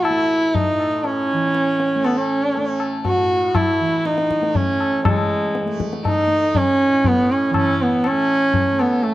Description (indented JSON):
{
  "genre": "indian classical, Hindustani",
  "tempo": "120 BPM",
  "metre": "4/4",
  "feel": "straight",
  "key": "A raga yaman",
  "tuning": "A4 = 438 Hz",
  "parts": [
    { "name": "rich sarangi", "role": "melody", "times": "0.0-9.1 s", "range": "G#3 to F#4", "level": "-17 LUFS", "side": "right 1 dB", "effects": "none" },
    { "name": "tanpura", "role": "drone", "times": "0.0-9.1 s", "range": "A2 to A3", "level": "-28 LUFS", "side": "right 2 dB", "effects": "stereo widening" },
    { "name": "tabla", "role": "percussion", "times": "0.0-9.1 s", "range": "none", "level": "-23 LUFS", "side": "left 3 dB", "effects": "none" }
  ],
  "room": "light reverb",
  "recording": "dry, close 1970s-style studio recording",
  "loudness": "-16 LUFS",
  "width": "side -15 dB against mid",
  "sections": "0.0-5.0 A section; 5.0-9.1 B section",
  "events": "none",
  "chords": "none",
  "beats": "0.04 0.55 | 1.05 1.55 2.05 2.55 | 3.05 3.55 4.05 4.55 | 5.05 5.55 6.05 6.55 | 7.04 7.54 8.04 8.54 | 9.04"
}